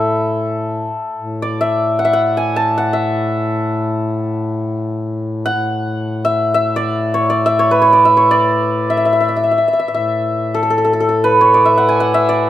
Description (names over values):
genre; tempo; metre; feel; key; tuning
Persian modal ensemble; free time; none; none; A dastgah mahur; A4 = 441 Hz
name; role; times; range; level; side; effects
santur; melody; 0.0-12.5 s; A4 to B5; -14 LUFS; equal; none
mellow duduk; drone; 0.0-12.5 s; A2; -20 LUFS; left 1 dB; none
room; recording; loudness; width
light reverb; close, detailed microphones; -13 LUFS; side -12 dB against mid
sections
0.0-1.1 A section; 1.1-12.5 A section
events
none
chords
none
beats
free time